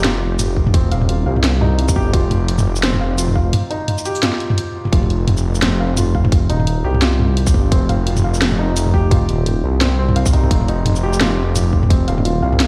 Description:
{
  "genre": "half-time drum and bass",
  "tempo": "172 BPM",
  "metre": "4/4",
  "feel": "swing 57% on 16ths, half-time",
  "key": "unclear",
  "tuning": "A4 = 440 Hz",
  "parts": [
    { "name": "felt-muted upright piano", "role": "arpeggios", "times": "0.0-12.7 s", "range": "C4 to F5", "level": "-26 LUFS", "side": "equal", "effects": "dub echo" },
    { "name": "dark detuned saw bass", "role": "bass", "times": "0.0-12.7 s", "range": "Eb1 to C2", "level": "-19 LUFS", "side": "equal", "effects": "none" },
    { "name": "drum and bass drum kit", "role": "drums", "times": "0.0-12.7 s", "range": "hi-hat, shaker, snare drum, toms", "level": "-22 LUFS", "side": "equal", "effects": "studio reverb" },
    { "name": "electronic kick drum", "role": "drums", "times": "0.6-12.0 s", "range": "none", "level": "-18 LUFS", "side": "equal", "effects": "studio reverb" }
  ],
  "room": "light reverb, digital ambience",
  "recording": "played on a big sound system in a bare room, stone room reverb",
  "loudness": "-16 LUFS",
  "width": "mono",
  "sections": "0.0-12.7 A section",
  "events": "break 3.5-4.9",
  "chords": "0.0 Fsus2",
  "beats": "0.04 0.39 | 0.74 1.09 1.44 1.79 | 2.14 2.48 2.83 3.18 | 3.53 3.88 4.23 4.58 | 4.93 5.28 5.62 5.97 | 6.32 6.67 7.02 7.37 | 7.72 8.07 8.41 8.76 | 9.11 9.46 9.81 10.16 | 10.51 10.86 11.21 11.55 | 11.90 12.25 12.60"
}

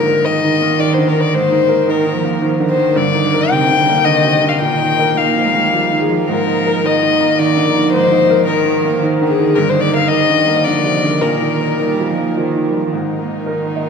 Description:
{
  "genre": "neoclassical piano and strings",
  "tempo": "109 BPM",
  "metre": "3/4",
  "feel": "rubato",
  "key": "unclear",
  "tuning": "A4 = 440 Hz",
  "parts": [
    { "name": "dark violin", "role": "melody", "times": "0.0-13.9 s", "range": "Eb4 to G5", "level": "-15 LUFS", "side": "left 6 dB", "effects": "none" },
    { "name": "rich cello", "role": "second line", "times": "0.0-13.9 s", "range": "C3 to Bb3", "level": "-21 LUFS", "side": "right 5 dB", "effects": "none" },
    { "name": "bright upright piano", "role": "accompaniment", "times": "0.0-13.9 s", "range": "G2 to Eb5", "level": "-17 LUFS", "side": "right 2 dB", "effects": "none" },
    { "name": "warm chamber string section", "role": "sustained chords", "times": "0.0-13.9 s", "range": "Eb3 to Bb4", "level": "-26 LUFS", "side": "left 1 dB", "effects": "none" }
  ],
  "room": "wet cathedral reverb, RT60 5.0 s",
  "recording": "recorded in a church or concert hall",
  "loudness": "-12 LUFS",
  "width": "side -6 dB against mid",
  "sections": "0.0-12.9 A section",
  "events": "none",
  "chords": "0.0 Absus2; 3.0 Ebmaj7/G; 4.6 Bbsus4; 6.3 Absus2; 9.6 Ebmaj7/G; 11.2 Bbsus4; 12.9 Absus2",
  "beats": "0.25 0.80 | 1.34 1.89 2.42 | 2.96 3.51 4.06 | 4.62 5.18 5.74 | 6.29 6.84 7.39 | 7.94 8.48 9.02 | 9.57 10.11 10.66 | 11.23 11.80 12.36 | 12.93 13.48"
}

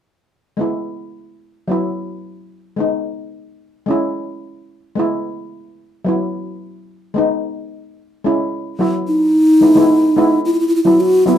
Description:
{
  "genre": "calypso",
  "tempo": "110 BPM",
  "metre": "4/4",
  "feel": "straight",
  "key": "E major",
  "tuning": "A4 = 441 Hz",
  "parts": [
    { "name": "steel pan", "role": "accompaniment", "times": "0.6-11.4 s", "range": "F#3 to E4", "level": "-18 LUFS", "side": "equal", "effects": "none" },
    { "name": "breathy mellow bass ocarina", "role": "melody", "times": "9.1-11.4 s", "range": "B3 to F#4", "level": "-11 LUFS", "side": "equal", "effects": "none" }
  ],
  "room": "moderate studio reverb, RT60 0.6 s",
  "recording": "band playing live in one room",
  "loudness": "-14 LUFS",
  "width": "side -10 dB against mid",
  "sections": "0.6-9.3 A section; 9.3-11.4 B section",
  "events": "none",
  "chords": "0.6 E; 1.7 Bsus4; 2.8 G#m; 3.9 C#m; 5.0 E; 6.1 Bsus4; 7.2 G#m; 8.3 C#m; 8.8 Bsus4; 9.3 Emaj7; 10.4 Bsus4",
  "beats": "| 0.59 1.14 1.69 2.24 | 2.79 3.33 3.88 4.43 | 4.97 5.52 6.07 6.62 | 7.16 7.71 8.26 8.80 | 9.35 9.89 10.44 10.98"
}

